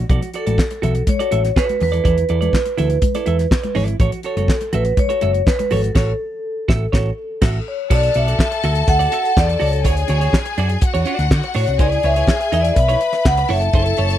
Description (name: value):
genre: disco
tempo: 123 BPM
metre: 4/4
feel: straight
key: B dorian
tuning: A4 = 441 Hz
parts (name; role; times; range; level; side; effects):
- semi-hollow electric guitar; accompaniment; 0.0-14.2 s; D4 to E5; -25 LUFS; right 8 dB; none
- hollow-body short-scale picked electric bass; bass; 0.0-14.2 s; F#1 to D3; -19 LUFS; equal; none
- damped 70s drum kit; drums; 0.1-14.2 s; crash cymbal, handclaps, hi-hat, kick drum, snare drum; -18 LUFS; equal; none
- congas; percussion; 0.1-5.8 s; none; -27 LUFS; left 4 dB; none
- vibraphone with soft mallets; melody; 0.4-14.0 s; A4 to F#5; -20 LUFS; equal; none
- clear studio string section; second line; 7.9-14.2 s; F#4 to B5; -23 LUFS; left 5 dB; none
room: small room ambience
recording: dry, close 1970s-style studio recording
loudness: -15 LUFS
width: side -11 dB against mid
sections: 0.0-7.9 A section; 7.9-14.2 B section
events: band accent 6.0-7.9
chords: 0.1 Bm7; 1.8 E7sus4; 4.0 A6; 7.9 Bm7; 9.8 Dmaj7; 11.8 C#m7; 13.5 F#m7